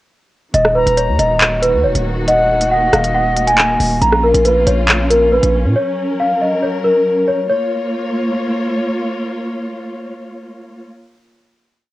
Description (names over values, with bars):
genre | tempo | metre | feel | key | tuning
hip hop, drill | 138 BPM | 4/4 | half-time | Bb phrygian | A4 = 441 Hz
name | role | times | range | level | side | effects
celesta | melody | 0.5-8.8 s | Bb4 to Bb5 | -14 LUFS | equal | low-pass filter, cassette tape
warm studio string section | sustained chords | 0.5-10.8 s | Eb3 to Db5 | -21 LUFS | equal | none
distorted 808-style bass | bass | 0.5-5.8 s | Eb1 to Bb2 | -18 LUFS | equal | distortion
drill drum kit | drums | 0.5-5.5 s | handclaps, hi-hat, rim click | -16 LUFS | equal | vintage 12-bit sampler grit, cassette tape
silver concert flute | second line | 0.8-4.0 s | Eb5 to Bb5 | -22 LUFS | left 4 dB | tape echo
room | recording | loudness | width
light reverb, small room ambience | home recording on cassette | -12 LUFS | side -16 dB against mid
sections
0.5-7.5 hook; 7.5-11.0 final chord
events
none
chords
0.5 Ebm; 4.0 Bbm; 5.8 Gb; 7.5 Bbm